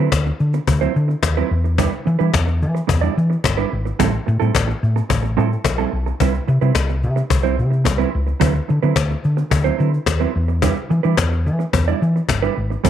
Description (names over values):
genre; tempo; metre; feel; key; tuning
disco; 109 BPM; 4/4; straight; E minor; A4 = 443 Hz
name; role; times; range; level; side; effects
mellow electric guitar; accompaniment; 0.0-12.9 s; F#3 to D5; -22 LUFS; right 12 dB; none
hollow-body short-scale fingered electric bass; bass; 0.0-12.9 s; G1 to E3; -18 LUFS; left 1 dB; none
cajon; drums; 0.1-12.9 s; none; -20 LUFS; left 5 dB; none
room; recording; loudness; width
light reverb, small room ambience; 1960s-style stereo; -16 LUFS; side -10 dB against mid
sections
0.0-12.9 A section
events
none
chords
0.0 D13; 1.5 Em7; 4.0 Am7; 6.2 Cmaj7; 8.4 D13; 10.3 Em7